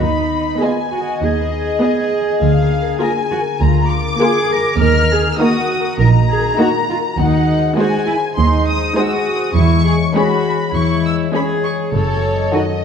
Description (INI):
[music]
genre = cinematic, playful, whimsical film cue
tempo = 101 BPM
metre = 4/4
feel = straight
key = Eb minor, C# minor from 7.2 s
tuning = A4 = 440 Hz
[part]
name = dark studio violin section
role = melody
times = 0.0-12.8 s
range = C#5 to F6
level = -21 LUFS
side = left 2 dB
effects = none
[part]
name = concert harp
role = arpeggios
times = 0.0-12.8 s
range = F#2 to Ab5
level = -20 LUFS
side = left 8 dB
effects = none
[part]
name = warm studio cello section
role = bass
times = 0.0-12.6 s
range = Eb4 to Bb4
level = -20 LUFS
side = right 2 dB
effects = none
[part]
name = warm studio double bass section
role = bass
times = 0.0-12.4 s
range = F#1 to E2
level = -17 LUFS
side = right 4 dB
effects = none
[part]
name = warm studio violin section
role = second line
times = 0.6-12.8 s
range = Gb4 to Eb5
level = -23 LUFS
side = left 1 dB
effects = none
[part]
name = rich studio viola section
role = accompaniment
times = 0.6-12.8 s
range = D#3 to Ab4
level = -20 LUFS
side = right 2 dB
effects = none
[sound]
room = moderate scoring stage reverb, RT60 1.6 s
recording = dark, warm production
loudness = -13 LUFS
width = side -7 dB against mid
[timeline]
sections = 0.0-12.8 A section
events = none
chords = 0.0 Abm/Eb; 2.4 Bb7/D; 4.8 Ebm; 7.2 G#7/D#; 9.6 C#m/E; 11.9 D#m7b5/F#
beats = | 0.01 0.61 1.21 1.81 | 2.41 3.01 3.60 4.20 | 4.80 5.39 5.99 6.59 | 7.18 7.78 8.37 8.97 | 9.56 10.16 10.75 11.34 | 11.93 12.53